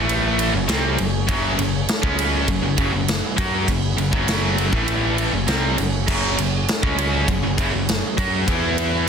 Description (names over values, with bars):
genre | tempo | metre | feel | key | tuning
hard rock | 100 BPM | 4/4 | straight | F# minor | A4 = 444 Hz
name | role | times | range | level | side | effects
overdriven tonewheel organ | sustained chords | 0.0-9.1 s | E3 to B4 | -33 LUFS | right 2 dB | lush chorus
cranked stack guitar | riff | 0.0-9.1 s | F#2 to F#4 | -26 LUFS | right 10 dB | overdrive
overdriven electric guitar | riff | 0.0-9.1 s | F#2 to F#4 | -26 LUFS | left 13 dB | none
scooped high-gain guitar | riff | 0.0-9.1 s | F#2 to F#4 | -26 LUFS | right 1 dB | distortion
picked electric bass | bass | 0.0-9.1 s | F#1 to F#2 | -25 LUFS | equal | none
big rock drum kit | drums | 0.1-8.9 s | crash cymbal, kick drum, ride cymbal, snare drum | -23 LUFS | right 1 dB | none
room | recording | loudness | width
studio reverb | dense, heavily limited modern master | -18 LUFS | side -7 dB against mid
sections
0.0-9.1 A section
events
none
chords
0.0 A5; 0.5 F#5; 4.7 A5; 5.3 F#5; 8.5 E5